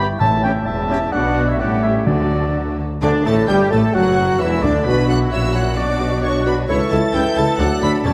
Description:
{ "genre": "quick classical-period movement for symphony orchestra", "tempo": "131 BPM", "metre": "2/4", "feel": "straight", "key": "D major", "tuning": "A4 = 442 Hz", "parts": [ { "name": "rich studio violin section", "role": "melody", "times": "0.0-8.1 s", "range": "F#4 to B6", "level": "-33 LUFS", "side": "equal", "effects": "none" }, { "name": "clear oboe", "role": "second line", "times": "0.0-8.1 s", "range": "A4 to A5", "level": "-32 LUFS", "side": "equal", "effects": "none" }, { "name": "rich studio violin section", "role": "second line", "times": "0.0-8.1 s", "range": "C#4 to B5", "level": "-31 LUFS", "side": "equal", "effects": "none" }, { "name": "silver concert flute", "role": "second line", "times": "0.0-8.1 s", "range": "B4 to B5", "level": "-29 LUFS", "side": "equal", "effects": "none" }, { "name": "warm clarinet", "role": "second line", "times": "0.0-8.1 s", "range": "D4 to A5", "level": "-27 LUFS", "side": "equal", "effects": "none" }, { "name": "mellow bassoon", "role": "accompaniment", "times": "0.0-8.1 s", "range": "D3 to F#4", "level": "-27 LUFS", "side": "equal", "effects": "none" }, { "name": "warm studio viola section", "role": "accompaniment", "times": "0.0-8.1 s", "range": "D3 to A4", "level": "-28 LUFS", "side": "equal", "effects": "none" }, { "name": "dark French horn section", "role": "sustained chords", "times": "0.0-8.1 s", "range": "D3 to E4", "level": "-27 LUFS", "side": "equal", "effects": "none" }, { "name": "clear trumpet section", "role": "stabs", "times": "0.0-8.1 s", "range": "D4 to A4", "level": "-30 LUFS", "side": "equal", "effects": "none" }, { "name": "rich symphonic cello section", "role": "bass", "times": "0.0-8.1 s", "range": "C#2 to D3", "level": "-25 LUFS", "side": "equal", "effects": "none" }, { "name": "warm studio double bass section", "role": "bass", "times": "0.0-8.1 s", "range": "E1 to D2", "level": "-25 LUFS", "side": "equal", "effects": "none" }, { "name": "timpani", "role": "percussion", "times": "0.2-3.5 s", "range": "A2 to D3", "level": "-26 LUFS", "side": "equal", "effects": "none" } ], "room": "wet scoring stage reverb, RT60 1.9 s", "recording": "lossy compression artefacts", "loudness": "-17 LUFS", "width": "mono", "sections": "0.0-3.0 A section; 3.0-8.1 B section", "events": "none", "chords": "0.2 A7; 1.1 Bm; 1.6 A7; 2.1 D; 3.0 D5; 3.5 Gsus2; 3.9 D/F#; 4.9 Bm; 5.3 F#7/A#; 5.8 Bm; 6.7 A/C#; 7.6 D" }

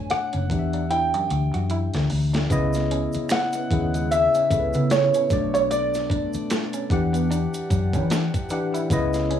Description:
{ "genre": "R&B, neo-soul", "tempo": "75 BPM", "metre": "4/4", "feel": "swing 58% on 16ths", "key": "C# phrygian", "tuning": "A4 = 440 Hz", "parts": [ { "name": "warm grand piano", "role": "melody", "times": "0.0-8.5 s", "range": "C#5 to G#5", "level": "-23 LUFS", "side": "right 1 dB", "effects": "cassette tape" }, { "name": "tine electric piano", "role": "accompaniment", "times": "0.0-9.4 s", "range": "B2 to F#5", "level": "-28 LUFS", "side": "left 4 dB", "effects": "medium stereo tremolo, cassette tape" }, { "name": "vintage muted fingered electric bass", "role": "bass", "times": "0.1-9.4 s", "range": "F#1 to E3", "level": "-24 LUFS", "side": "equal", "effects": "tube saturation" }, { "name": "dusty soul sampler-style drum kit", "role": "drums", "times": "0.1-9.4 s", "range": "hi-hat, kick drum, rim click, snare drum", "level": "-28 LUFS", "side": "equal", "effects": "overdrive" }, { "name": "electric guitar through a small old amp", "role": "second line", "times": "0.3-9.4 s", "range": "G#3 to F#4", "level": "-33 LUFS", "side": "right 5 dB", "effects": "tremolo, cassette tape" }, { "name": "chamber organ, principal", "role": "sustained chords", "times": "2.5-9.4 s", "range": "C#3 to F#5", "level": "-32 LUFS", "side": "right 1 dB", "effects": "cassette tape" }, { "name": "tube shaker and finger snaps", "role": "percussion", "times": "2.5-9.3 s", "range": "none", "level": "-40 LUFS", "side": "right 8 dB", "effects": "none" } ], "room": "light reverb", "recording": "home recording on cassette, studio ambience", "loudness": "-20 LUFS", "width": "side -9 dB against mid", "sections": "0.0-2.5 A section; 2.5-9.4 B section", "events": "drum fill 0.9-2.5", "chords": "0.5 Em9; 2.5 C#m9; 5.3 Bm9; 6.9 Em9" }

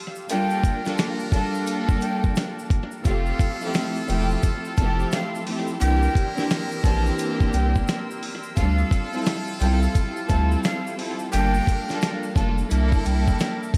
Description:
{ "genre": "hip hop, boom-bap hip-hop", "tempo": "87 BPM", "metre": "4/4", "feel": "swing 63% on 16ths", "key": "F major", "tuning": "A4 = 437 Hz", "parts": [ { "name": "warm studio string section", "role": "sustained chords", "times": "0.0-13.8 s", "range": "Bb3 to E6", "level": "-42 LUFS", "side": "equal", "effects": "none" }, { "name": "tube shaker", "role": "percussion", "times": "0.2-13.8 s", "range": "none", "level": "-50 LUFS", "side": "equal", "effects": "none" }, { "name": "breathy mellow jazz flute", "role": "melody", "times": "0.3-13.6 s", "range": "F5 to A5", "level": "-33 LUFS", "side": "equal", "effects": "tape echo" }, { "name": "warm studio string section", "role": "accompaniment", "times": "0.3-13.8 s", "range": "E3 to A4", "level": "-29 LUFS", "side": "equal", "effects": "cassette tape, tape echo" }, { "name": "muted trumpet section", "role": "stabs", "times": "0.3-13.7 s", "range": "G3 to Bb4", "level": "-37 LUFS", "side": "equal", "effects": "tape echo" }, { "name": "dusty soul sampler-style drum kit", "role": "drums", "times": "0.3-13.8 s", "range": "hi-hat, kick drum, snare drum", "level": "-26 LUFS", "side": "equal", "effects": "tape echo" }, { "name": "round analog bass", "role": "bass", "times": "3.1-13.3 s", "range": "E1 to D2", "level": "-24 LUFS", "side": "equal", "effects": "none" } ], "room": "light reverb, studio reverb", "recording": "echo-heavy mix, vinyl crackle", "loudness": "-23 LUFS", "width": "mono", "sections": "0.0-13.8 A section", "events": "break 0.0-3.1", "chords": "0.3 Gm9; 3.1 Fmaj7; 5.8 C7; 8.6 Dm11; 11.3 Gm9; 12.7 C13" }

